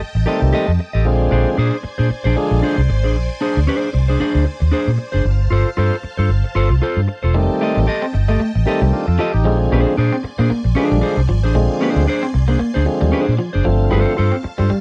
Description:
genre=funk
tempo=114 BPM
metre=4/4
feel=swing 56% on 16ths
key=unclear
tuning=A4 = 440 Hz
part: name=string machine, violins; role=sustained chords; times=0.0-14.8 s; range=C5 to C6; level=-35 LUFS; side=equal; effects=ensemble chorus
part: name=vintage muted fingered electric bass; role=bass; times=0.0-14.7 s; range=E1 to Bb2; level=-18 LUFS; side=equal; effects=none
part: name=clean electric guitar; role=accompaniment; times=0.2-14.7 s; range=D4 to Eb5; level=-23 LUFS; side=equal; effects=none
part: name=overdriven tonewheel organ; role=stabs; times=0.3-3.1, 7.3-14.2 s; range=D3 to C5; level=-22 LUFS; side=equal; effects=stopped rotary speaker
part: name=electric guitar at the edge of break-up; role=riff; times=7.3-14.8 s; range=F3 to C4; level=-26 LUFS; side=equal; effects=none
room=little or no reverb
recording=tape saturation, nothing above 10.5 kHz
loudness=-17 LUFS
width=mono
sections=0.0-14.8 A section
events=tonewheel organ fill 2.1-3.2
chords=0.0 F9 (rootless); 1.1 Bb9; 5.3 G9sus4; 7.3 F9; 9.4 Bb9; 13.7 G9sus4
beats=0.00 0.53 | 1.05 1.58 2.10 2.63 | 3.15 3.68 4.20 4.73 | 5.25 5.78 6.30 6.83 | 7.35 7.88 8.40 8.93 | 9.45 9.97 10.50 11.03 | 11.55 12.08 12.60 13.13 | 13.65 14.18 14.70

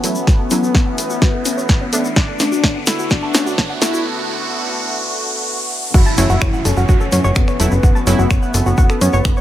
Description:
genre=melodic techno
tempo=127 BPM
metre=4/4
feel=straight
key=F# minor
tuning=A4 = 440 Hz
part: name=wide unison lead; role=melody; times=0.0-9.4 s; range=B3 to E4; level=-22 LUFS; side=left 2 dB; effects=wide subtle chorus, cassette tape, sidechain pumping, tape echo
part: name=sweeping resonant pad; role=sustained chords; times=0.0-9.4 s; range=D3 to F#4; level=-26 LUFS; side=equal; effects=wide subtle chorus, sidechain pumping
part: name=warbly dusty pluck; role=arpeggios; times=0.0-9.4 s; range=C#4 to A6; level=-24 LUFS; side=equal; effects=chorus, sidechain pumping, tape echo
part: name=synth brass stab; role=stabs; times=0.0-8.3 s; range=F#3 to E4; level=-25 LUFS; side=right 2 dB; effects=none
part: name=house drum kit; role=drums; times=0.0-9.3 s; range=crash cymbal, finger snaps, hi-hat, snare drum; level=-20 LUFS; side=equal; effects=none
part: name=egg shaker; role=percussion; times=0.0-9.4 s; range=none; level=-28 LUFS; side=left 2 dB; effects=none
part: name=riser and downlifter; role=sound effects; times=0.0-9.4 s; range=none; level=-26 LUFS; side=right 1 dB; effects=none
part: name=warbly tape-like pad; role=texture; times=0.0-4.1 s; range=F#4 to A5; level=-38 LUFS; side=equal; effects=none
part: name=electronic kick drum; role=drums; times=0.3-9.3 s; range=none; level=-14 LUFS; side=equal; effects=none
part: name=plucky analog bass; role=bass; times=5.9-9.3 s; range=E1 to F#2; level=-16 LUFS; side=equal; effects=sidechain pumping
room=little or no reverb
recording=high-pass filter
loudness=-13 LUFS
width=side -12 dB against mid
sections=0.0-5.9 A section; 5.9-9.4 B section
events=build-up 0.0-5.9; drum fill 0.0-4.1; riser 0.0-5.9; filter sweep 0.0-5.9; break 4.1-5.9; drop 5.9-9.4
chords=0.0 F#m7; 2.2 Bm7; 5.9 F#m7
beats=| 0.27 0.75 1.22 1.69 | 2.16 2.64 3.11 3.58 | 4.05 4.53 5.00 5.47 | 5.94 6.42 6.89 7.36 | 7.83 8.30 8.78 9.25

